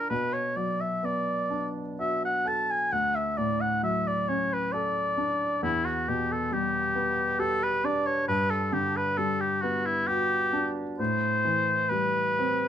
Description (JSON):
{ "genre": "classical, impressionist duo for oboe and grand piano", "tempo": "62-69 BPM", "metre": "3/4", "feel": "rubato", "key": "E minor from 5.6 s", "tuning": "A4 = 436 Hz", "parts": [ { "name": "warm oboe", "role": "melody", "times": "0.0-12.7 s", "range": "E4 to A5", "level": "-26 LUFS", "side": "equal", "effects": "none" }, { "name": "clear baby grand piano", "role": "accompaniment", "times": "0.0-12.7 s", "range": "D2 to A4", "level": "-30 LUFS", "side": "equal", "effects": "none" } ], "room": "light reverb", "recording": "minimal, uncompressed stereo recording", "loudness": "-25 LUFS", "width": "side -9 dB against mid", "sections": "0.0-12.7 A section", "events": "none", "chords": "0.1 Bm7; 2.9 Dmaj7; 5.6 Em7; 8.3 Gmaj7; 11.0 Am7", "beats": "| 0.11 1.04 1.99 | 2.93 3.85 4.75 | 5.64 6.53 7.41 | 8.29 9.19 10.08 | 10.99 11.91" }